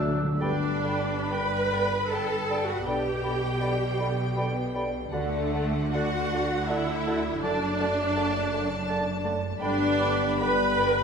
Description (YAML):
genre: classical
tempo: 64-84 BPM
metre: 3/4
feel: rubato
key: G major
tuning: A4 = 440 Hz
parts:
  - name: mellow clarinet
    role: second line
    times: 0.0-10.9 s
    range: D5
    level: -37 LUFS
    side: right 1 dB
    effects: none
  - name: mellow concert flute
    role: second line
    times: 0.0-10.9 s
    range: A5 to E6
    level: -39 LUFS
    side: equal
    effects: none
  - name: rich studio violin section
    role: second line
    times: 0.0-11.0 s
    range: D4 to B5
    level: -36 LUFS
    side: left 3 dB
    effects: none
  - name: mellow bassoon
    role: accompaniment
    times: 0.0-11.0 s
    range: D3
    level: -36 LUFS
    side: right 1 dB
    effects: none
  - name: warm studio viola section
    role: accompaniment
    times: 0.0-11.0 s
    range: F#3 to B4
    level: -28 LUFS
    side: right 1 dB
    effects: none
  - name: mellow French horn section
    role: sustained chords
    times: 0.0-11.0 s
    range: B3 to A4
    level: -36 LUFS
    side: left 2 dB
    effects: none
  - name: concert harp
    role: arpeggios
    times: 0.0-11.0 s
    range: F#2 to D6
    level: -35 LUFS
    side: left 5 dB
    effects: none
  - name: rich studio double bass section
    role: bass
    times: 0.0-11.0 s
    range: F#1 to D2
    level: -36 LUFS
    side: right 4 dB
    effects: none
  - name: warm studio cello section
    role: bass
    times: 0.0-11.0 s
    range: D2 to D3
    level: -34 LUFS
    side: right 2 dB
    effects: none
  - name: rich studio violin section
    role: melody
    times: 0.4-11.0 s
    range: F#5 to B5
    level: -39 LUFS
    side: left 4 dB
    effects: none
  - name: mellow cor anglais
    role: second line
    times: 0.4-10.9 s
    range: F#5 to A5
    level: -38 LUFS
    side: right 3 dB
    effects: none
room: wet concert hall reverb, RT60 2.1 s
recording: minimal, uncompressed stereo recording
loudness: -24 LUFS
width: side -6 dB against mid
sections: 0.4-11.0 A section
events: none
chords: 0.4 G; 2.9 G/B; 5.1 D; 7.4 D/F#; 9.6 G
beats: | 0.41 1.30 2.11 | 2.87 3.61 4.37 | 5.12 5.93 6.68 | 7.42 8.15 8.88 | 9.61 10.41